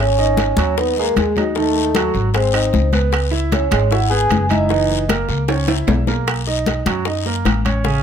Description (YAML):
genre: Afro-Cuban jazz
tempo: 153 BPM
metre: 4/4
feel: straight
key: G# minor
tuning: A4 = 441 Hz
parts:
  - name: vibraphone with soft mallets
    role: melody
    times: 0.0-5.1 s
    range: F#4 to G#5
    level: -20 LUFS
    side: right 2 dB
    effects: none
  - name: clear trombone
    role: second line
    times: 0.0-5.0 s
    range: F#3 to G#4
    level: -24 LUFS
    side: left 6 dB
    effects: none
  - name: upright bass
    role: bass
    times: 0.0-8.0 s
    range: F#1 to F#2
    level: -20 LUFS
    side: equal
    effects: none
  - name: clear concert grand piano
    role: accompaniment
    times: 0.2-8.0 s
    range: C#3 to E5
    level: -22 LUFS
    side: right 4 dB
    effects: none
  - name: bongos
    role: percussion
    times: 0.2-8.0 s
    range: none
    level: -26 LUFS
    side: left 9 dB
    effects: none
  - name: congas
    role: percussion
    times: 0.2-8.0 s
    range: none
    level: -22 LUFS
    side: left 4 dB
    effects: none
  - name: guiro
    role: percussion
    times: 0.4-8.0 s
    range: none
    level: -30 LUFS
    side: left 8 dB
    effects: none
  - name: timbales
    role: percussion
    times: 0.4-7.9 s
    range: none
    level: -24 LUFS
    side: right 6 dB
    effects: none
room: light reverb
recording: close, detailed microphones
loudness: -15 LUFS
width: side -8 dB against mid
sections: 0.0-8.0 A section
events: drum fill 5.5-6.3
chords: 0.0 G#5; 2.3 G#; 3.1 C#m7; 4.7 F#6; 6.3 Bmaj9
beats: 0.38 0.77 1.16 | 1.56 1.95 2.34 2.74 | 3.13 3.52 3.92 4.31 | 4.70 5.09 5.49 5.88 | 6.27 6.67 7.06 7.45 | 7.85